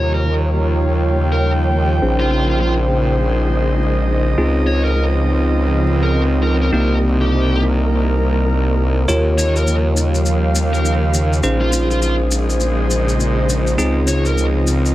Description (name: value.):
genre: glitch hop.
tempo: 102 BPM.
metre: 4/4.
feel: swing 61% on 16ths.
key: Bb dorian.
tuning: A4 = 435 Hz.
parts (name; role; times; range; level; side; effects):
bluesy overdriven lead guitar; melody; 0.0-14.4 s; F4 to Db5; -25 LUFS; right 1 dB; distortion, tape echo.
warbly tape-like pad; sustained chords; 0.0-14.9 s; C3 to C5; -24 LUFS; equal; chorus, built-in reverb.
bell-like tine electric piano; stabs; 0.0-14.9 s; Bb3 to Db5; -22 LUFS; equal; vintage 12-bit sampler grit, low-pass filter, tape echo.
formant-sweep wobble bass; bass; 0.0-14.9 s; Bb1 to Eb2; -16 LUFS; equal; chorus, tube saturation.
airy breathy pad; texture; 0.0-14.9 s; C4 to Bb5; -23 LUFS; right 1 dB; chorus.
maracas; percussion; 9.1-14.9 s; none; -25 LUFS; left 3 dB; none.
room: light reverb.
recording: dense, heavily limited modern master, vinyl crackle.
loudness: -14 LUFS.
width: side -15 dB against mid.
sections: 0.0-14.9 A section.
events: filter sweep on tine electric piano 0.0-14.9.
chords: 0.0 Eb9; 2.0 Bbm11; 4.4 Dbmaj9; 6.7 Cm7; 9.1 Eb9; 11.4 Bbm11; 13.8 Dbmaj9.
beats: 0.26 0.85 1.44 | 2.03 2.61 3.20 3.79 | 4.38 4.97 5.56 6.14 | 6.73 7.32 7.91 8.50 | 9.09 9.67 10.26 10.85 | 11.44 12.03 12.61 13.20 | 13.79 14.38.